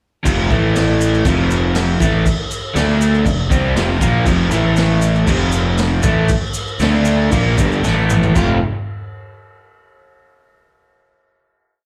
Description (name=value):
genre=garage rock duo or trio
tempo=118 BPM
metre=4/4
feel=straight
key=F major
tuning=A4 = 439 Hz
part: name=crunchy overdriven guitar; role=riff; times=0.2-8.6 s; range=F2 to F4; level=-19 LUFS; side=equal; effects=slapback echo
part: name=fuzz fingered electric bass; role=bass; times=0.3-8.6 s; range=F1 to D2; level=-20 LUFS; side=equal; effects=overdrive
part: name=raw garage drum kit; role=drums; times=0.3-8.5 s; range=crash cymbal, kick drum, snare drum, toms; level=-22 LUFS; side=equal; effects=none
part: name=tube shaker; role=percussion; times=0.3-8.6 s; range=none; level=-33 LUFS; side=equal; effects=none
room=little or no reverb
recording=live gig heard through the venue's PA, club reverb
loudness=-16 LUFS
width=mono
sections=0.2-8.4 riff; 8.4-10.4 final chord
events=drum fill 7.8-8.4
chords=0.2 F5; 0.5 A5; 1.2 F; 2.7 D5; 3.3 F5; 4.5 A5; 5.3 F; 6.8 D5; 7.3 Gm7; 7.8 A5; 8.4 F5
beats=| 0.24 0.74 1.24 1.74 | 2.25 2.75 3.25 3.75 | 4.26 4.77 5.28 5.79 | 6.30 6.81 7.33 7.84 | 8.36